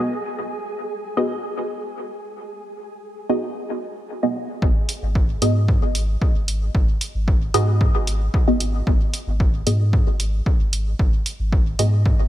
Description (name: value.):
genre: dub techno.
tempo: 113 BPM.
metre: 4/4.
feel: straight.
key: G# minor.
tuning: A4 = 439 Hz.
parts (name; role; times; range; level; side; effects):
filtered dub chord stab; stabs; 0.0-12.0 s; B3 to D#5; -25 LUFS; equal; phaser, dub echo.
flickering grainy texture; texture; 0.0-4.6 s; G#4; -33 LUFS; right 1 dB; built-in reverb, sidechain pumping.
pure sine sub bass; bass; 4.6-12.3 s; G#1 to G#2; -21 LUFS; equal; sidechain pumping.
electronic kick drum; drums; 4.6-12.2 s; none; -18 LUFS; equal; none.
electronic hi-hat; drums; 4.9-11.9 s; none; -28 LUFS; right 2 dB; none.
room: light reverb, digital ambience.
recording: bright 1980s-style digital production.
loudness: -18 LUFS.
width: side -14 dB against mid.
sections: 0.0-4.6 A section; 4.6-12.3 B section.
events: none.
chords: 0.0 G#m7.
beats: | 0.38 0.91 1.44 1.97 | 2.50 3.03 3.56 4.09 | 4.62 5.15 5.68 6.22 | 6.75 7.28 7.81 8.34 | 8.87 9.40 9.93 10.46 | 10.99 11.53 12.06.